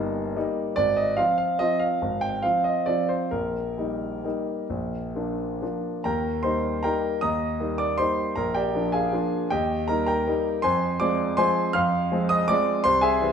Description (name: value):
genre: classical, piano waltz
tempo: 127-170 BPM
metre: 3/4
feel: rubato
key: Eb major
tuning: A4 = 440 Hz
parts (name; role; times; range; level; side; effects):
- clear concert grand piano; solo; 0.0-13.3 s; G1 to F6; -22 LUFS; equal; none
room: moderate recital hall reverb, RT60 1.4 s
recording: minimal, uncompressed stereo recording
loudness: -22 LUFS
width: side -7 dB against mid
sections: 0.0-6.1 A section; 6.1-13.3 B section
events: none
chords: 0.0 Eb/G; 0.8 Fm/Ab; 3.3 Eb/Bb; 4.7 Bb; 6.1 Eb; 8.4 Bb7; 9.5 Eb; 10.6 Fm